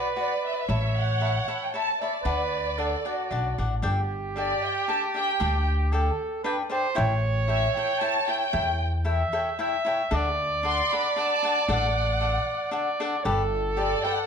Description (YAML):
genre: mexican folk, mariachi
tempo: 115 BPM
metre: 3/4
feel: straight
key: D major, G major from 3.8 s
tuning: A4 = 441 Hz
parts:
  - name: dark symphonic violin section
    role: melody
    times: 0.0-14.3 s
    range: D5 to C6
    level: -28 LUFS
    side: equal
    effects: none
  - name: warm trumpet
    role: second line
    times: 0.0-14.3 s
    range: F#4 to E5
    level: -28 LUFS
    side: right 3 dB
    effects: none
  - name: cavaquinho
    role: accompaniment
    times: 0.0-14.2 s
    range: D4 to B5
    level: -30 LUFS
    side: left 4 dB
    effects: none
  - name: upright bass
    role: bass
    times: 0.7-13.9 s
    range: G1 to E2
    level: -27 LUFS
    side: equal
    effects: none
room: moderate recital hall reverb, RT60 1.4 s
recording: none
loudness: -23 LUFS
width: side -7 dB against mid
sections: 0.0-3.8 A section; 3.8-14.3 B section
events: none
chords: 0.0 Bmadd9; 0.7 Aadd9; 2.3 D; 3.8 Gsus2; 7.0 A7; 10.1 D; 13.2 Gadd9